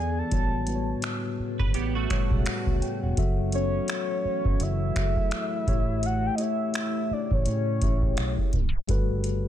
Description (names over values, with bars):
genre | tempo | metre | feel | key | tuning
contemporary R&B | 84 BPM | 4/4 | swing 58% on 16ths | unclear | A4 = 438 Hz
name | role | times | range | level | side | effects
soft octave-layered synth lead | melody | 0.0-8.5 s | C#5 to A5 | -31 LUFS | equal | chorus, phaser, tape echo
mellow tine electric piano | accompaniment | 0.0-9.5 s | A2 to G5 | -32 LUFS | left 5 dB | medium stereo tremolo
deep dark ambient pad | sustained chords | 0.0-9.5 s | B2 to A4 | -34 LUFS | right 1 dB | chorus, built-in reverb
vintage muted fingered electric bass | bass | 0.0-9.5 s | E1 to A2 | -28 LUFS | equal | none
booming analog drum machine | drums | 0.3-9.4 s | finger snaps, hi-hat, kick drum | -27 LUFS | equal | vintage 12-bit sampler grit
clean electric guitar | arpeggios | 1.6-3.0 s | A3 to B4 | -35 LUFS | right 10 dB | ensemble chorus, tape echo
room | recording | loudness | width
little or no reverb | tape stop | -24 LUFS | side -11 dB against mid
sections
0.0-8.9 A section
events
tape stop 8.5-8.9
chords
0.3 A13; 3.2 F#m7; 5.7 A7; 8.9 Gmaj9